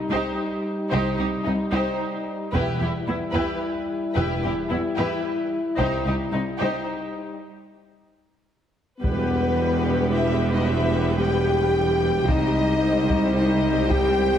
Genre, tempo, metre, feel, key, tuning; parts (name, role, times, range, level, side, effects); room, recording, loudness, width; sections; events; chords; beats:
cinematic, epic orchestral film score; 111 BPM; 3/4; straight; E harmonic minor; A4 = 443 Hz
warm French horn section; sustained chords; 0.0-14.4 s; G3 to G4; -25 LUFS; left 2 dB
rich symphonic violin section; melody; 0.1-14.4 s; Eb4 to C5; -32 LUFS; left 3 dB
rich symphonic violin section; second line; 0.1-14.4 s; B3 to G5; -31 LUFS; left 2 dB
rich symphonic viola section; accompaniment; 0.1-14.4 s; G3 to G4; -30 LUFS; right 2 dB
rich symphonic cello section; bass; 0.1-14.4 s; C2 to E2; -28 LUFS; right 1 dB
taiko ensemble; drums; 0.1-14.4 s; -28 LUFS; equal
rich symphonic double bass section; bass; 0.9-6.0, 9.0-14.4 s; E1 to C2; -28 LUFS; right 2 dB
mellow tuba; bass; 9.0-14.4 s; E1 to C2; -29 LUFS; right 4 dB
moderate scoring stage reverb, RT60 1.9 s; heavily compressed radio sound, multiband compression; -21 LUFS; side -9 dB against mid
0.0-9.0 A section; 9.0-14.4 B section
build-up 0.0-9.0; break 7.4-9.0
0.0 Cm; 2.5 Em; 5.8 Cm; 9.0 Em; 12.3 Cm
0.37 | 0.91 1.45 1.99 | 2.54 3.08 3.62 | 4.16 4.70 5.24 | 5.78 6.33 6.87 | 7.41 7.95 8.49 | 9.03 9.57 10.11 | 10.65 11.20 11.73 | 12.28 12.81 13.36 | 13.89